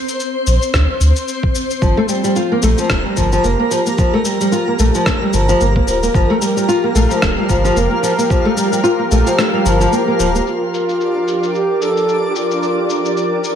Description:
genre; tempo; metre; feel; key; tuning
organic downtempo; 111 BPM; 4/4; swing 57% on 16ths; G minor; A4 = 441 Hz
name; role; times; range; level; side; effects
twinkling granular texture; texture; 0.0-13.6 s; C4 to D5; -23 LUFS; left 1 dB; built-in reverb
electronic shaker and rim click; drums; 0.1-13.6 s; none; -23 LUFS; left 1 dB; low-pass filter on perc, low-pass filter on snare, low-pass filter on room
warm sub bass; bass; 0.5-10.4 s; D1 to D2; -16 LUFS; equal; tube saturation, sidechain pumping
electronic kick drum; drums; 0.7-8.4 s; none; -18 LUFS; equal; none
warm analog pad; sustained chords; 1.8-13.6 s; F3 to Bb4; -21 LUFS; right 1 dB; chorus, sidechain pumping
nylon-string guitar; arpeggios; 1.8-10.5 s; F3 to F4; -16 LUFS; equal; vintage 12-bit sampler grit, tape echo
bass bansuri; melody; 10.5-13.4 s; F4 to A4; -18 LUFS; right 1 dB; tape echo
room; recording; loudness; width
light reverb; none; -13 LUFS; side -8 dB against mid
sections
0.0-10.5 A section; 10.5-13.6 B section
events
kick drops out 9.4-10.5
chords
0.0 Gm9; 10.5 Gm7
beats
0.20 0.74 1.28 | 1.82 2.36 2.90 3.44 | 3.98 4.52 5.06 5.60 | 6.14 6.68 7.22 7.76 | 8.31 8.85 9.39 9.93 | 10.47 11.01 11.55 12.09 | 12.63 13.17

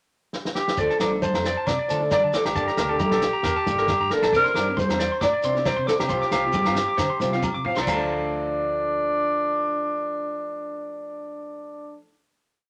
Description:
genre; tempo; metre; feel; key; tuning
highlife guitar band; 136 BPM; 4/4; swing 54% on 16ths; D minor; A4 = 442 Hz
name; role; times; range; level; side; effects
warm soul drum kit; drums; 0.3-8.0 s; crash cymbal, kick drum, snare drum, toms; -33 LUFS; equal; none
breathy alto saxophone; melody; 0.5-12.0 s; D4 to D5; -26 LUFS; equal; none
picked old ladder-braced acoustic guitar; accompaniment; 0.8-12.1 s; E3 to A4; -32 LUFS; equal; none
electric guitar at the edge of break-up; arpeggios; 0.8-12.1 s; A4 to D6; -32 LUFS; equal; none
vintage muted fingered electric bass; bass; 0.8-12.0 s; G1 to D3; -37 LUFS; equal; none
congas; percussion; 0.8-8.1 s; none; -34 LUFS; equal; none
shekere; percussion; 0.8-8.1 s; none; -38 LUFS; equal; none
agogo bells; percussion; 1.0-8.0 s; none; -35 LUFS; equal; none
room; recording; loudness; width
moderate club reverb, RT60 0.7 s; none; -23 LUFS; mono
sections
0.0-0.8 pickup bar; 0.8-7.9 groove; 7.9-11.4 final chord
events
drum fill 0.3-0.8, 7.4-7.9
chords
0.0 N.C.; 0.8 Dm; 2.6 Gmadd9; 4.3 Cadd9; 6.1 Fsus2/C; 7.9 Dm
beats
0.35 | 0.79 1.23 1.68 2.12 | 2.56 3.01 3.45 3.90 | 4.34 4.78 5.22 5.67 | 6.11 6.55 6.99 7.43 | 7.87 8.31 8.75 9.19 | 9.63 10.07 10.51 10.96

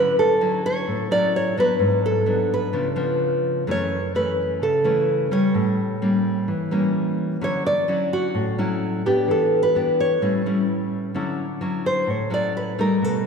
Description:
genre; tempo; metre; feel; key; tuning
bossa nova; 128 BPM; 4/4; straight; D major; A4 = 438 Hz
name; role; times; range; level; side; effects
nylon-string guitar; melody; 0.0-13.3 s; F#4 to D5; -22 LUFS; right 2 dB; none
nylon-string guitar; accompaniment; 0.0-13.3 s; F#2 to G4; -22 LUFS; left 2 dB; none
room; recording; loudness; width
wet concert hall reverb, RT60 2.1 s; recorded in a church or concert hall; -19 LUFS; side -5 dB against mid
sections
0.0-11.1 A section; 11.1-13.3 B section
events
nylon-string guitar solo 11.1-13.3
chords
0.0 Dmaj9; 1.8 G#m7b5; 2.7 C#7b9; 3.7 F#m7; 5.5 A7b9; 7.4 Dmaj9; 9.3 Em7; 10.2 A7; 11.1 Dmaj9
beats
0.40 0.87 1.34 | 1.80 2.27 2.74 3.21 | 3.67 4.14 4.61 5.08 | 5.54 6.01 6.48 6.95 | 7.41 7.88 8.35 8.81 | 9.28 9.74 10.21 10.68 | 11.14 11.61 12.08 12.54 | 13.01

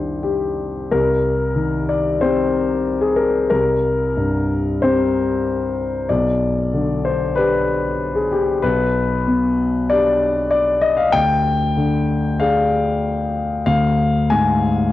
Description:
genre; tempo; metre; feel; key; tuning
neoclassical minimalist piano; 94 BPM; 4/4; rubato; C minor; A4 = 442 Hz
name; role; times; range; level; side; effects
dark concert grand piano; solo; 0.0-14.9 s; B1 to Ab5; -16 LUFS; left 2 dB; cassette tape
room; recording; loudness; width
moderate spring reverb, RT60 1.9 s, small room ambience; home recording on cassette; -16 LUFS; side -14 dB against mid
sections
0.9-14.9 A section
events
none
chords
0.0 Cmadd9; 0.9 Cm7; 6.1 G/B; 11.1 Ddim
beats
0.24 | 0.92 1.57 2.23 2.88 | 3.53 4.18 4.82 5.46 | 6.09 6.72 7.36 7.99 | 8.63 9.26 9.90 10.52 | 11.14 11.77 12.39 13.02 | 13.66 14.30

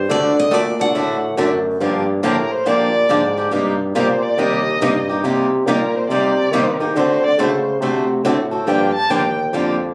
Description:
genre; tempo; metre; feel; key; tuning
acoustic string swing (jazz manouche); 140 BPM; 4/4; swing 64% on 8ths; G minor; A4 = 439 Hz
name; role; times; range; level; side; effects
picked steel-string acoustic guitar; melody; 0.0-1.3 s; C5 to F#5; -24 LUFS; equal; none
dark bassoon; bass; 0.0-9.9 s; Eb2 to Eb3; -22 LUFS; equal; none
picked steel-string acoustic guitar; accompaniment; 0.1-9.8 s; C3 to A4; -29 LUFS; equal; none
picked swing-style acoustic guitar; accompaniment; 0.1-9.8 s; C3 to A4; -23 LUFS; equal; none
rich violin; second line; 2.2-9.4 s; Bb4 to A5; -22 LUFS; equal; none
room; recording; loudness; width
light reverb; recorded on a phone in the room, club reverb, compression; -18 LUFS; mono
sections
0.0-1.8 A section; 1.8-9.9 B section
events
violin solo 1.8-9.9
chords
0.1 D; 1.8 Gm7; 3.5 Eb6/G; 5.2 Cm9; 7.0 D7; 8.7 Gm7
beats
| 0.09 0.52 0.95 1.38 | 1.81 2.23 2.66 3.09 | 3.52 3.95 4.38 4.81 | 5.24 5.67 6.10 6.53 | 6.95 7.38 7.81 8.24 | 8.67 9.10 9.53

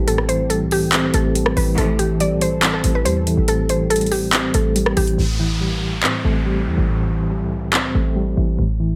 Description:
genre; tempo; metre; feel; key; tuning
hip hop, trap; 141 BPM; 4/4; half-time; A minor; A4 = 435 Hz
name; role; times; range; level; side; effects
mallet-like synth pluck; melody; 0.0-5.2 s; G4 to D5; -25 LUFS; equal; chorus, low-pass filter
soft electric-piano-like synth keys; accompaniment; 0.0-9.0 s; A2 to C4; -24 LUFS; equal; chorus, tremolo, low-pass filter
warm analog pad; sustained chords; 0.0-5.1 s; E3 to A4; -30 LUFS; equal; chorus
short 808-style bass; bass; 0.0-9.0 s; A1 to A2; -24 LUFS; equal; none
trap drum kit; drums; 0.1-7.8 s; handclaps, hi-hat, rim click; -23 LUFS; equal; overdrive
rich studio string section; stabs; 1.8-2.2 s; A2 to E3; -27 LUFS; equal; none
downlifter; sound effects; 5.2-8.6 s; none; -33 LUFS; equal; none
room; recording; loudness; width
light reverb; none; -19 LUFS; mono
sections
0.0-5.2 A section; 5.2-9.0 B section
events
hi-hats muted 5.2-9.0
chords
0.0 Am7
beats
| 0.08 0.50 0.93 1.35 | 1.78 2.20 2.63 3.05 | 3.48 3.90 4.33 4.76 | 5.18 5.61 6.03 6.46 | 6.88 7.31 7.74 8.16 | 8.59

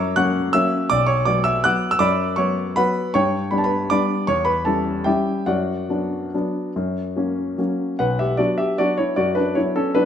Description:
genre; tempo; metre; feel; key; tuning
classical, piano waltz; 137-173 BPM; 3/4; rubato; B minor; A4 = 440 Hz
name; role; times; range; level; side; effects
warm concert grand piano; solo; 0.0-10.1 s; B1 to F#6; -18 LUFS; equal; none
room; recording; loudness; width
wet stone room reverb, RT60 1.2 s; none; -18 LUFS; side -8 dB against mid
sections
0.0-8.0 A section; 8.0-10.1 B section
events
none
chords
0.0 F#; 0.9 Bm; 3.1 G; 4.3 C#dim/E; 5.5 Bm/F#; 6.8 F#; 8.0 Bm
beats
0.17 0.55 | 0.91 1.26 1.64 | 2.00 2.37 2.76 | 3.13 3.50 3.89 | 4.27 4.65 5.06 | 5.47 5.90 6.33 | 6.75 7.16 7.58 | 8.00 8.39 8.79 | 9.17 9.56 9.96

